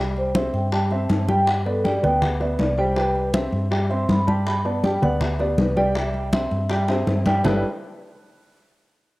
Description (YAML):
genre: Afro-Cuban jazz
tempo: 161 BPM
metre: 4/4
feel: straight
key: G major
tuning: A4 = 440 Hz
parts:
  - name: dark baby grand piano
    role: accompaniment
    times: 0.0-7.6 s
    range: G3 to G5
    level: -24 LUFS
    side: right 1 dB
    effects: none
  - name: hollow-body short-scale fingered electric bass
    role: bass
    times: 0.0-7.6 s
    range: G1 to G2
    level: -25 LUFS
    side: equal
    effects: none
  - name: vibraphone with soft mallets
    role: melody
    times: 0.2-7.0 s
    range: G4 to C6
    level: -26 LUFS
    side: equal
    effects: cassette tape
  - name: congas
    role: percussion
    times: 0.2-7.5 s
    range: none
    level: -24 LUFS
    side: equal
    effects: none
  - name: bongos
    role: percussion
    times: 0.4-7.5 s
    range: none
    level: -29 LUFS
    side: left 3 dB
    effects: none
room: light reverb, studio reverb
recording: home recording on cassette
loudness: -19 LUFS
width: side -20 dB against mid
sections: 0.0-7.4 A section; 7.4-8.9 B section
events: vibraphone solo 0.0-7.4; drum fill 6.9-7.4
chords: 0.0 C6; 1.5 G; 3.0 C; 4.5 G; 6.0 C; 7.4 G69